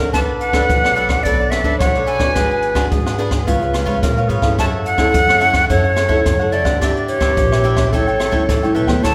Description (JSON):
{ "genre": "samba and choro", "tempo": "108 BPM", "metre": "4/4", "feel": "straight", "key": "unclear", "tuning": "A4 = 436 Hz", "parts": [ { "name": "warm clarinet", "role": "second line", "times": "0.0-9.1 s", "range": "G4 to C#5", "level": "-25 LUFS", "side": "equal", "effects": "none" }, { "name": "cavaquinho", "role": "accompaniment", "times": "0.0-9.1 s", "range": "D4 to G5", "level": "-27 LUFS", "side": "equal", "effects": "none" }, { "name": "nylon-string guitar", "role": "accompaniment", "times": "0.0-9.1 s", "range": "G#2 to C#5", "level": "-25 LUFS", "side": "equal", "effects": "none" }, { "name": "upright bass", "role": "bass", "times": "0.0-9.1 s", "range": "G#1 to Bb2", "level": "-25 LUFS", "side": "equal", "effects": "none" }, { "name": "silver concert flute", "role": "melody", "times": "0.1-9.1 s", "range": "C#5 to A5", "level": "-20 LUFS", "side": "equal", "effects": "none" }, { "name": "jazz brush drum kit", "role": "drums", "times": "0.1-9.1 s", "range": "hi-hat, kick drum, rim click", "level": "-22 LUFS", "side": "equal", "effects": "none" } ], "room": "moderate scoring stage reverb, RT60 1.9 s", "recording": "recorded in a church or concert hall", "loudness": "-16 LUFS", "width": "mono", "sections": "0.0-9.1 A section", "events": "none", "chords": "0.1 Bm9; 2.4 G#m7b5; 3.5 C#7; 4.6 F#m7; 6.8 Em7; 7.9 A7" }